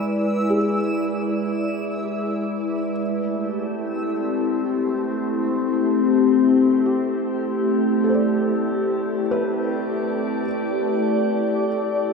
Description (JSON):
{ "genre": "ambient", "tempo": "free time", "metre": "none", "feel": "none", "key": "A minor", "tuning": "A4 = 436 Hz", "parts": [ { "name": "glassy FM pad", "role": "sustained chords", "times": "0.0-12.1 s", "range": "G#3 to D5", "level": "-20 LUFS", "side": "left 2 dB", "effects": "ensemble chorus, built-in reverb, shimmer reverb" }, { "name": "felt-muted upright piano", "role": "arpeggios", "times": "0.0-12.1 s", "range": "E4 to D5", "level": "-30 LUFS", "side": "right 1 dB", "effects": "tape echo, shimmer reverb" }, { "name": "backwards swelling texture", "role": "texture", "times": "0.0-3.0 s", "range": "E6", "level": "-34 LUFS", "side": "right 1 dB", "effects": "built-in reverb, shimmer reverb" } ], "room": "wet lush hall reverb, RT60 3.1 s", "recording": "none", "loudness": "-19 LUFS", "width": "side -4 dB against mid", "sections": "0.0-3.0 A section; 3.0-12.1 B section", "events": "fade-in on felt piano 3.0-12.1", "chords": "0.0 E7/G#; 3.0 Am7" }